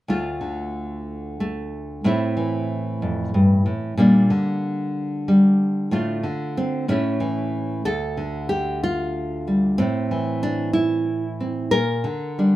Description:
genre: folk, solo fingerstyle acoustic guitar.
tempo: 62 BPM (dotted quarters).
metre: 6/8.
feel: straight.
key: D minor.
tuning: A4 = 440 Hz.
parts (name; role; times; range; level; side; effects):
nylon-string guitar; solo; 0.1-12.6 s; D2 to Bb4; -20 LUFS; equal; none.
room: light reverb.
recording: band playing live in one room.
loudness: -20 LUFS.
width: side -15 dB against mid.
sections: 0.1-7.9 A section; 7.9-12.6 B section.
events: none.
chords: 0.1 Dm; 2.0 Am; 4.0 Gm/Bb; 5.9 Dm/A; 6.9 A; 7.9 Dm; 9.8 Am; 11.7 Gm/Bb.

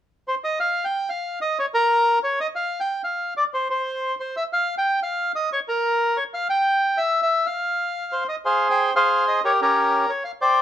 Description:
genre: tango.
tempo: 184 BPM.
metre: 3/4.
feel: rubato.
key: F minor.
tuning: A4 = 440 Hz.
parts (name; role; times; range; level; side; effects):
bandoneon; solo; 0.3-10.6 s; Db4 to G5; -20 LUFS; equal; none.
room: light reverb.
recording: band playing live in one room.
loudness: -20 LUFS.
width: side -11 dB against mid.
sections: 0.6-8.4 A section; 8.4-10.6 A section.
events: none.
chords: 0.0 N.C.; 8.4 Fm; 9.4 Gdim.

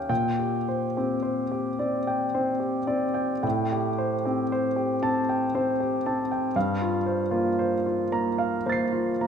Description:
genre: classical, impressionist solo piano.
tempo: 50-61 BPM.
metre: 3/4.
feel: rubato.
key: unclear.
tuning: A4 = 440 Hz.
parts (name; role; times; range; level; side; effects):
warm concert grand piano; solo; 0.0-9.3 s; G2 to C7; -24 LUFS; equal; none.
room: moderate scoring stage reverb, RT60 1.7 s.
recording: minimal, uncompressed stereo recording.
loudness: -24 LUFS.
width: side -7 dB against mid.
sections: 0.0-9.3 A section.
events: none.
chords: 0.1 Bb69; 3.4 Am7; 6.6 Gm11.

